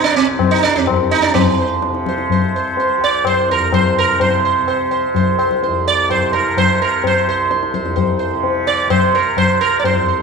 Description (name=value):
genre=indian classical, Hindustani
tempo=127 BPM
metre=3/4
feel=straight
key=unclear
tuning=A4 = 437 Hz
part: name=sitar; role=melody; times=0.0-10.2 s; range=C4 to D5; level=-15 LUFS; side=right 7 dB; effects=none
part: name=tanpura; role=drone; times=0.0-10.2 s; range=C2 to C3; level=-22 LUFS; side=left 2 dB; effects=stereo widening
part: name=tabla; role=percussion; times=0.4-10.0 s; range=none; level=-18 LUFS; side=left 8 dB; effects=none
room=wet echo chamber reverb, RT60 1.3 s, studio ambience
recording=1960s-style stereo with parts hard left and right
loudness=-13 LUFS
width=side -5 dB against mid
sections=0.0-1.3 A section; 1.3-10.2 B section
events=none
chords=none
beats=0.39 0.87 | 1.35 1.82 2.30 | 2.78 3.25 3.73 | 4.20 4.68 5.15 | 5.62 6.09 6.57 | 7.04 7.51 7.98 | 8.45 8.91 9.38 | 9.85